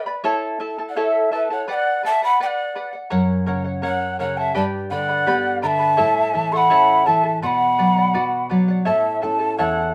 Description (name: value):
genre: andean folk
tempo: 84 BPM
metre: 2/4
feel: straight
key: unclear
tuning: A4 = 438 Hz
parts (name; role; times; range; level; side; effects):
- breathy mellow quena; melody; 0.0-9.9 s; E5 to C#6; -22 LUFS; equal; none
- breathy mellow pan flute; second line; 0.0-8.5 s; A4 to F#5; -26 LUFS; equal; none
- charango; accompaniment; 0.0-9.9 s; E4 to B5; -26 LUFS; equal; none
- nylon-string guitar; accompaniment; 3.1-9.9 s; E2 to F#4; -26 LUFS; equal; none
room: wet studio reverb, RT60 0.6 s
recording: none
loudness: -19 LUFS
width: mono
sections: 0.0-8.9 A section; 8.9-9.9 B section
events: none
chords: 0.3 A; 1.7 Bm; 3.1 F#; 4.5 G; 6.0 A; 7.4 Bm; 8.9 A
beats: | 0.26 0.97 | 1.69 2.40 | 3.12 3.83 | 4.55 5.27 | 5.99 6.71 | 7.43 8.15 | 8.87 9.60